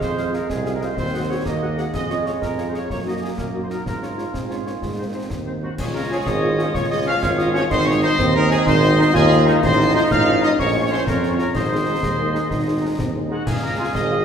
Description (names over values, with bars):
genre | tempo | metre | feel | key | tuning
military-style march for wind band | 125 BPM (dotted quarters) | 6/8 | straight | Db major | A4 = 437 Hz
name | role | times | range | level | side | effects
dark trumpet section | melody | 0.0-14.2 s | Gb4 to Gb5 | -26 LUFS | equal | none
clear trombone section | sustained chords | 0.0-13.8 s | Eb3 to F4 | -29 LUFS | right 2 dB | none
mellow tuba | bass | 0.0-14.2 s | Ab1 to Ab2 | -22 LUFS | right 1 dB | none
concert snare drum, concert bass drum and clash cymbals | drums | 0.0-14.1 s | none | -28 LUFS | left 1 dB | none
warm woodwind section | second line | 0.2-14.2 s | Eb4 to Gb5 | -29 LUFS | left 1 dB | none
mellow French horn section | accompaniment | 0.2-14.2 s | F3 to Ab4 | -29 LUFS | left 2 dB | none
mellow euphonium | second line | 4.3-14.2 s | Gb3 to Ab4 | -23 LUFS | right 2 dB | none
bright wooden piccolo | second line | 5.6-14.2 s | Gb5 to F6 | -27 LUFS | left 3 dB | none
room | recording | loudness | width
wet recital hall reverb, RT60 1.6 s | recorded in a church or concert hall | -17 LUFS | side -7 dB against mid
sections
0.0-5.8 A section; 5.8-14.2 B section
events
none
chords
0.0 Fm; 1.0 Ab7/Eb; 1.9 Db/F; 2.9 Ebm/Gb; 3.9 Db/Ab; 4.8 Ab; 5.8 Db; 7.7 Ab; 9.6 F7/A; 10.6 Bbm; 11.5 Ab; 13.5 Db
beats
| 0.01 0.49 | 0.97 1.45 | 1.93 2.41 | 2.90 3.38 | 3.86 4.34 | 4.82 5.30 | 5.78 6.26 | 6.74 7.22 | 7.71 8.19 | 8.67 9.15 | 9.63 10.11 | 10.59 11.07 | 11.55 12.03 | 12.51 12.99 | 13.47 13.95